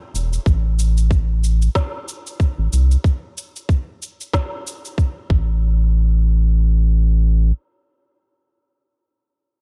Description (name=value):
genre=organic downtempo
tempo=93 BPM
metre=4/4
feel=swing 56% on 16ths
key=A minor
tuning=A4 = 440 Hz
part: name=round analog bass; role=bass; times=0.1-7.5 s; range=E1 to C2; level=-17 LUFS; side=equal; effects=sidechain pumping
part: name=electronic cabasa and snare drum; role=drums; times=0.2-5.1 s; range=none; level=-31 LUFS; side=equal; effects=none
part: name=electronic kick drum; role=drums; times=0.5-5.4 s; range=none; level=-19 LUFS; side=equal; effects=none
room=digital ambience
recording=dark, warm production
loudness=-18 LUFS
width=mono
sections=0.0-5.6 A section; 5.6-8.2 B section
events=filter sweep on analog synth bass 0.0-3.0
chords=none